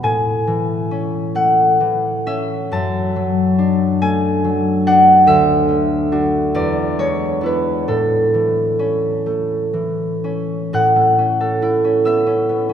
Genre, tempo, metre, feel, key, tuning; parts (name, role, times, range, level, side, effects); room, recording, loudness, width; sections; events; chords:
classical, solo harp piece; 39-49 BPM (dotted quarters); 6/8; rubato; A major; A4 = 445 Hz
concert harp; solo; 0.0-12.7 s; D2 to F#6; -14 LUFS; equal
wet cathedral reverb, RT60 4.2 s; minimal, uncompressed stereo recording; -14 LUFS; side -9 dB against mid
0.0-10.7 A section; 10.7-12.7 A section
0.0 A; 2.7 D/F#; 5.3 D; 6.6 E7; 7.9 A